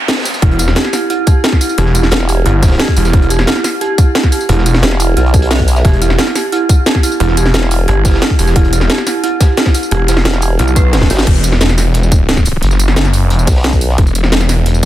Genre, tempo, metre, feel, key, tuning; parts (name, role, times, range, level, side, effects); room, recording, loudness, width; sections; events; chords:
dark technical drum and bass; 177 BPM; 4/4; straight; E minor; A4 = 442 Hz
crunchy breakbeat drum kit; drums; 0.1-14.9 s; hi-hat, snare drum; -26 LUFS; equal
drum and bass drum kit; drums; 0.1-14.9 s; crash cymbal, hi-hat, snare drum, tambourine; -16 LUFS; equal; overdrive
dark detuned synth bell; arpeggios; 0.4-11.2 s; E4 to E5; -17 LUFS; right 3 dB; chorus, tremolo, vintage 12-bit sampler grit, sidechain pumping, dub echo
snarling distorted saw bass; bass; 0.4-14.9 s; E1 to B1; -12 LUFS; equal; distortion, overdrive
electronic kick drum; drums; 0.4-14.9 s; -10 LUFS; equal; overdrive
formant-sweep wobble bass; bass; 2.1-2.4, 4.8-7.9, 10.3-11.3, 13.5-14.0 s; E1 to B1; -12 LUFS; equal; chorus
digital ambience; dense, heavily limited modern master; -9 LUFS; side -13 dB against mid
0.0-11.3 A section; 11.3-14.9 A section
break 0.0-0.4; drop 0.0-11.3, 11.3-14.9; drum fill 10.9-11.3; band accent 11.2
0.0 E5